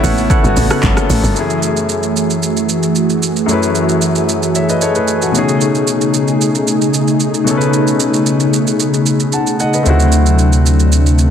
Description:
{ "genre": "amapiano", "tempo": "113 BPM", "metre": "4/4", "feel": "straight", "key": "F# dorian", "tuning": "A4 = 440 Hz", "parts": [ { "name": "warm concert grand piano", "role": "accompaniment", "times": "0.0-11.3 s", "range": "F#2 to A5", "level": "-17 LUFS", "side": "left 4 dB", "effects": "none" }, { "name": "warm analog pad", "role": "sustained chords", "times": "0.0-11.3 s", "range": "C3 to F#5", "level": "-15 LUFS", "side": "right 1 dB", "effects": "chorus, sidechain pumping" }, { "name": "percussive organ stab", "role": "stabs", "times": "0.0-0.8 s", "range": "A4 to F#5", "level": "-23 LUFS", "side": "right 3 dB", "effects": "chorus, tape echo" }, { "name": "tight log drum bass", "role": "bass", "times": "0.0-1.4 s", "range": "G1 to A1", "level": "-15 LUFS", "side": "equal", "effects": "none" }, { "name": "deep house drum kit", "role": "drums", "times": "0.0-11.3 s", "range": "handclaps, hi-hat, kick drum, rim click, shaker", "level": "-18 LUFS", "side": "right 2 dB", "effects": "overdrive" }, { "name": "congas", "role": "percussion", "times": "0.0-1.2 s", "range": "none", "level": "-25 LUFS", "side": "right 6 dB", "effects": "none" }, { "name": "sub bass with octave", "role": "bass", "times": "9.9-11.3 s", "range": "D2", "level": "-10 LUFS", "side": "equal", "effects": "none" } ], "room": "light reverb", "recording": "dense, heavily limited modern master", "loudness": "-11 LUFS", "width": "side -8 dB against mid", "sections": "0.0-1.4 A section; 1.4-11.3 B section", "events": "drop 0.0-1.4", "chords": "0.0 Gmaj9#11; 1.4 F#m9; 5.3 B13; 9.9 D7", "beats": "0.30 0.83 | 1.36 1.90 2.43 2.96 | 3.49 4.02 4.55 5.08 | 5.61 6.14 6.67 7.21 | 7.74 8.27 8.80 9.33 | 9.86 10.39 10.92" }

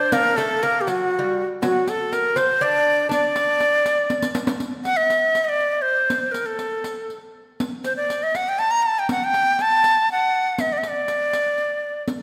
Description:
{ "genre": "Persian modal ensemble", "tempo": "80 BPM (dotted quarters)", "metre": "6/8", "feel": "straight", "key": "D dastgah homayun", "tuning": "A4 = 441 Hz", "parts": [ { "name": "breathy bright ney", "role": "melody", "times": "0.0-12.0 s", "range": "F#4 to Bb5", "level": "-21 LUFS", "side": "equal", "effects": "none" }, { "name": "lute", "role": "second line", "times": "0.0-4.3 s", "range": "F#3 to D4", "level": "-28 LUFS", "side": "equal", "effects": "none" }, { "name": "riq", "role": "percussion", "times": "0.1-12.2 s", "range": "none", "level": "-32 LUFS", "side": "equal", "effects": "none" } ], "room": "wet concert hall reverb, RT60 2.1 s", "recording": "none", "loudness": "-21 LUFS", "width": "mono", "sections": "0.0-4.6 A section; 4.6-12.2 B section", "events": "drum fill 4.1-4.6", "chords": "none", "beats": "| 0.12 0.87 | 1.61 2.36 | 3.11 3.85 | 4.60 5.35 | 6.10 6.84 | 7.59 8.34 | 9.08 9.83 | 10.57 11.32 | 12.07" }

